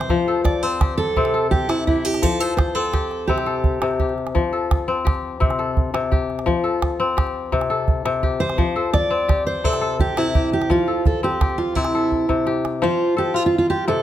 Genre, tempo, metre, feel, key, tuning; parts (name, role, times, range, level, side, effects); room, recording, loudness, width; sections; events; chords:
west african traditional, West African string and xylophone music; 113 BPM (dotted quarters); 12/8; straight; F major; A4 = 436 Hz
fingerpicked steel-string acoustic guitar; melody; 0.0-4.1, 8.4-14.0 s; E4 to D5; -21 LUFS; right 3 dB
kora; arpeggios; 0.0-14.0 s; C3 to C5; -22 LUFS; left 5 dB
calabash; percussion; 0.0-12.8 s; -22 LUFS; right 2 dB
light reverb; close, detailed microphones; -18 LUFS; side -12 dB against mid
0.0-12.8 A section; 12.8-14.0 B section
drum fill 12.1-12.8
0.1 F; 1.2 C5; 2.2 F; 3.3 C5; 4.3 F; 5.4 C5; 6.5 F; 7.5 C5; 8.6 F; 9.6 C; 10.7 F; 11.8 C; 12.8 F